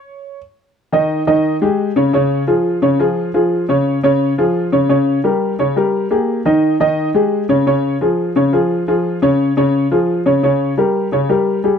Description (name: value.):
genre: latin.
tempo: 174 BPM.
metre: 4/4.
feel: straight.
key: unclear.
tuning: A4 = 440 Hz.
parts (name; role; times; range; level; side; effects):
dark baby grand piano; solo; 0.0-11.8 s; Db3 to Eb5; -13 LUFS; left 1 dB; none.
room: light reverb.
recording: close, detailed microphones.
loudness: -13 LUFS.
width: side -7 dB against mid.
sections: 0.8-11.8 A section.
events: none.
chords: 0.0 N.C.; 0.8 Ab5; 2.1 Db; 4.9 Gdim/Db; 6.3 Ab5; 7.7 Db; 10.4 Gdim/Db.